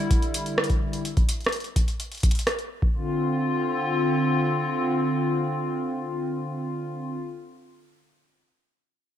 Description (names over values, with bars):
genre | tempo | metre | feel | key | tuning
IDM | 127 BPM | 4/4 | straight | D minor | A4 = 441 Hz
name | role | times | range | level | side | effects
hollow soft pad | sustained chords | 0.0-7.2 s | D3 to F4 | -25 LUFS | left 1 dB | chorus
booming analog drum machine | drums | 0.1-2.7 s | hi-hat, rim click | -28 LUFS | right 1 dB | none
electronic kick drum | drums | 0.1-2.9 s | none | -22 LUFS | equal | none
room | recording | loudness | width
light reverb | none | -23 LUFS | side -10 dB against mid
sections
0.0-2.9 A section; 2.9-6.7 B section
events
none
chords
0.0 Em7; 1.1 N.C.; 2.9 Dm7